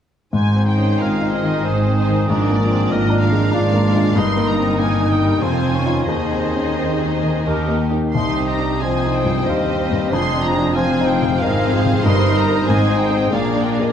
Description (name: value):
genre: classical, romantic movement for piano and orchestra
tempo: 84-98 BPM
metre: 3/4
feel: rubato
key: Ab major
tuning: A4 = 440 Hz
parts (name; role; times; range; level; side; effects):
- rich symphonic violin section; melody; 0.3-13.9 s; C5 to C6; -26 LUFS; left 2 dB; none
- warm baby grand piano; melody; 0.3-13.9 s; C2 to C5; -20 LUFS; left 3 dB; none
- mellow oboe; second line; 0.3-13.9 s; Ab4 to F5; -28 LUFS; right 1 dB; none
- warm clarinet; second line; 0.3-13.9 s; D4 to C5; -28 LUFS; left 2 dB; none
- dark symphonic cello section; bass; 0.3-13.9 s; C2 to Bb2; -24 LUFS; right 2 dB; none
- warm symphonic double bass section; bass; 0.3-13.9 s; F1 to Eb2; -24 LUFS; right 3 dB; none
- rich symphonic violin section; second line; 0.7-13.9 s; F4 to C5; -28 LUFS; left 2 dB; none
- warm symphonic viola section; accompaniment; 0.7-13.9 s; Eb3 to Eb4; -23 LUFS; right 2 dB; none
room: moderate scoring stage reverb, RT60 1.7 s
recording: dark, warm production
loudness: -15 LUFS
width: side -9 dB against mid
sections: 0.3-13.9 A section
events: none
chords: 0.3 Ab; 2.3 Bb7/Ab; 4.2 Eb/G; 5.4 Fm7; 6.1 Ab/Eb; 8.1 Cm; 10.1 Fm7; 12.0 Eb/G; 12.7 Ab; 13.3 Bb7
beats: | 0.33 0.99 1.65 | 2.28 2.91 3.53 | 4.16 4.79 5.42 | 6.08 6.78 7.46 | 8.14 8.82 9.47 | 10.12 10.76 11.41 | 12.04 12.66 13.32